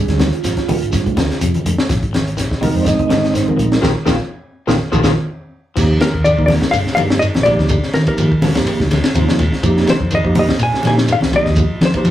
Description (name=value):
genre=afrobeat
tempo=124 BPM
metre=4/4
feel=swing 54% on 16ths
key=unclear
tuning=A4 = 440 Hz
part: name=percussive tonewheel organ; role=accompaniment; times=0.0-12.1 s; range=F3 to Eb5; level=-19 LUFS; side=right 2 dB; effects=slow rotary speaker
part: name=hollow-body short-scale fingered electric bass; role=bass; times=0.0-12.1 s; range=Ab1 to F3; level=-19 LUFS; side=equal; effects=none
part: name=crunchy breakbeat drum kit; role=drums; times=0.1-12.1 s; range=crash cymbal, hi-hat, kick drum, ride cymbal, snare drum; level=-19 LUFS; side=left 1 dB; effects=none
part: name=electric guitar at the edge of break-up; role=arpeggios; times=0.2-12.1 s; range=Bb2 to F3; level=-25 LUFS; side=left 4 dB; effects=none
part: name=congas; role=percussion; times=0.2-11.9 s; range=none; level=-21 LUFS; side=equal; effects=none
part: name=shekere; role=percussion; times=0.2-12.1 s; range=none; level=-25 LUFS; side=equal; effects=none
part: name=hollow-body jazz guitar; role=melody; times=6.0-12.1 s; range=Bb4 to Ab5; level=-18 LUFS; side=left 1 dB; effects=none
room=moderate studio reverb, RT60 0.5 s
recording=rough rehearsal-room recording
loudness=-13 LUFS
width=side -12 dB against mid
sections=0.0-5.8 A section; 5.8-12.1 B section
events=tonewheel organ solo 0.0-5.8; band accent 3.8-5.8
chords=0.0 Fm69; 1.9 Bb7sus4; 5.8 Ebmaj9; 9.6 F7(no3)